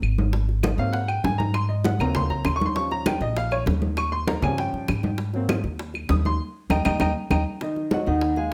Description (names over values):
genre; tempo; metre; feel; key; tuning
Afro-Cuban jazz; 198 BPM; 4/4; straight; unclear; A4 = 436 Hz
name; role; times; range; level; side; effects
upright bass; bass; 0.0-8.5 s; Ab1 to Ab2; -28 LUFS; equal; none
claves; percussion; 0.0-7.4 s; none; -36 LUFS; equal; none
congas; percussion; 0.0-8.5 s; none; -30 LUFS; equal; none
bongos; percussion; 0.3-8.5 s; none; -34 LUFS; equal; none
warm upright piano; accompaniment; 0.8-8.5 s; Eb3 to Eb6; -29 LUFS; equal; none
vibraphone with medium mallets; melody; 7.9-8.5 s; Eb5 to Gb5; -30 LUFS; equal; none
room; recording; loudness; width
moderate large studio reverb, RT60 0.9 s; none; -24 LUFS; mono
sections
0.0-7.6 A section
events
upright piano solo 0.0-7.6; band accent 6.4-7.6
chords
0.0 Ab9; 2.8 Eb9; 5.2 Ab9; 6.4 Eb; 7.6 Ab5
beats
0.03 | 0.34 0.64 0.94 1.25 | 1.55 1.85 2.16 2.46 | 2.76 3.07 3.37 3.67 | 3.98 4.28 4.58 4.89 | 5.19 5.50 5.80 6.10 | 6.41 6.71 7.01 7.32 | 7.62 7.92 8.23 8.53